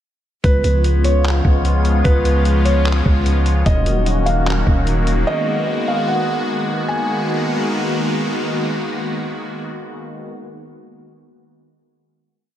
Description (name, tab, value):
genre	hip hop, atmospheric cloud-rap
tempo	149 BPM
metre	4/4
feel	half-time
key	G# dorian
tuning	A4 = 440 Hz
part	felt-muted upright piano	melody	0.4-8.1 s	B4 to G#5	-23 LUFS	right 1 dB	diffuse ambient delay
part	sweeping resonant pad	sustained chords	0.4-10.3 s	C#3 to F#4	-20 LUFS	equal	chorus
part	long sustained 808-style bass	bass	0.4-5.2 s	D#1 to C#2	-16 LUFS	equal	none
part	trip hop sampler-style drum kit	drums	0.4-5.2 s	handclaps, hi-hat, kick drum	-19 LUFS	equal	none
part	drifting glass-harmonics texture	texture	0.7-3.6 s	B3 to C#5	-30 LUFS	left 1 dB	chorus, built-in reverb
room	moderate church reverb, RT60 2.5 s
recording	dreamy mix soaked in reverb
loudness	-15 LUFS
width	side -11 dB against mid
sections	0.4-6.9 verse; 6.9-10.1 final chord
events	none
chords	0.4 C#7; 3.7 D#m7; 5.3 G#m9